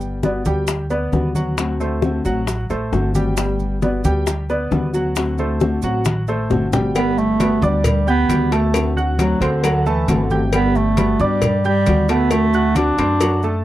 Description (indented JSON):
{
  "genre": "latin, Cuban son and guajira",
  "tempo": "134 BPM",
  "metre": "4/4",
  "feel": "straight",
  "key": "G major",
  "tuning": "A4 = 441 Hz",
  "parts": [
    { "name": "nylon-string guitar", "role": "accompaniment", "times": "0.0-13.2 s", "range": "D3 to F#4", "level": "-23 LUFS", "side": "left 3 dB", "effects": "none" },
    { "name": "clear concert grand piano", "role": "arpeggios", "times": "0.0-13.6 s", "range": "F#3 to G6", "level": "-23 LUFS", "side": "right 1 dB", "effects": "none" },
    { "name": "upright bass", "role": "bass", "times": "0.0-13.6 s", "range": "G1 to G2", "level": "-22 LUFS", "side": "equal", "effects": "none" },
    { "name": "congas", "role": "percussion", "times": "0.0-13.6 s", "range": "none", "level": "-24 LUFS", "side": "equal", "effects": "none" },
    { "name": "maracas", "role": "percussion", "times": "0.0-13.6 s", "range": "none", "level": "-35 LUFS", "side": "right 11 dB", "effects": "none" },
    { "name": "bongos and cowbell", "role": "percussion", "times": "0.2-13.4 s", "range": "none", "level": "-24 LUFS", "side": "left 5 dB", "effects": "none" },
    { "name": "warm bass clarinet", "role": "melody", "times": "7.0-13.6 s", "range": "D3 to D4", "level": "-18 LUFS", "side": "right 2 dB", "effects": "none" }
  ],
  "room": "light reverb",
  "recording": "dry, close 1970s-style studio recording",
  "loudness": "-16 LUFS",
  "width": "side -14 dB against mid",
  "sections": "0.0-7.0 A section; 7.0-13.6 B section",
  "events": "drum fill 6.1-7.0",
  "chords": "0.0 Gmaj7; 1.6 D7; 3.4 Gmaj7; 5.2 D7; 7.0 Gmaj7; 8.7 D7; 10.5 Gmaj7; 12.3 D7",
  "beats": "0.24 0.69 1.14 | 1.58 2.03 2.48 2.93 | 3.38 3.82 4.27 4.72 | 5.17 5.61 6.06 6.51 | 6.96 7.40 7.85 8.30 | 8.74 9.19 9.63 10.08 | 10.53 10.97 11.42 11.87 | 12.31 12.76 13.20"
}